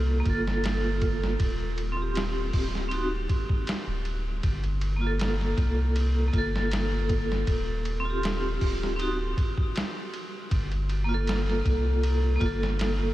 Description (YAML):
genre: trip hop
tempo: 79 BPM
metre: 4/4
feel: straight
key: G minor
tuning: A4 = 440 Hz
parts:
  - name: vibraphone with hard mallets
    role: accompaniment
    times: 0.0-13.1 s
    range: Bb3 to A4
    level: -30 LUFS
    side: equal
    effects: tremolo, low-pass filter, tape echo
  - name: round analog bass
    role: bass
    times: 0.0-13.1 s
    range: D1 to C2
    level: -28 LUFS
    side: equal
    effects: none
  - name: trip hop sampler-style drum kit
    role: drums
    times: 0.3-13.0 s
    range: hi-hat, kick drum, ride cymbal, snare drum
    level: -30 LUFS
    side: equal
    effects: none
room: moderate huge ambient reverb, RT60 7.8 s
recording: dreamy mix soaked in reverb, lossy compression artefacts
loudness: -25 LUFS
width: side -15 dB against mid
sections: 0.0-13.1 A section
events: none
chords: 0.0 Gm7; 1.4 Eb6; 2.9 N.C.; 4.4 Gm7; 7.5 Eb6; 9.0 D7b9; 10.5 Gm7